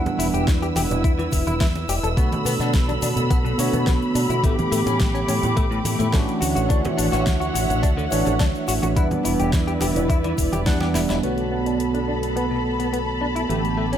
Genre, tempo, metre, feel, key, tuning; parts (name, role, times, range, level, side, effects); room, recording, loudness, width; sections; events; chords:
nu-disco, nu disco; 106 BPM; 4/4; straight; A4 = 440 Hz
tine electric piano; accompaniment; 0.0-14.0 s; D3 to F#5; -25 LUFS; right 2 dB; lush chorus, sidechain pumping, analog delay
muted studio string section; sustained chords; 0.0-14.0 s; D3 to E6; -26 LUFS; right 1 dB; sidechain pumping
fingered electric bass with an envelope filter; bass; 0.0-14.0 s; E1 to B2; -26 LUFS; equal; sidechain pumping
pop drum kit; drums; 0.1-14.0 s; hi-hat, shaker, snare drum; -30 LUFS; left 2 dB
congas and egg shaker; percussion; 0.1-11.2 s; -32 LUFS; right 2 dB
direct-recorded clean electric guitar; riff; 0.2-14.0 s; A2 to A4; -28 LUFS; left 3 dB; ensemble chorus, low-pass filter, analog delay
electronic kick drum; drums; 0.5-10.8 s; -20 LUFS; equal; overdrive
moderate plate reverb, RT60 1.9 s; dreamy mix soaked in reverb; -19 LUFS; side -10 dB against mid
0.0-11.2 A section; 11.2-14.0 B section
drum fill 10.8-11.2; filter sweep on clean electric guitar 11.2-14.0
0.0 Em7; 2.2 Bm7; 4.4 A9sus4; 6.4 Dmaj9; 9.0 Em7; 11.2 Bm7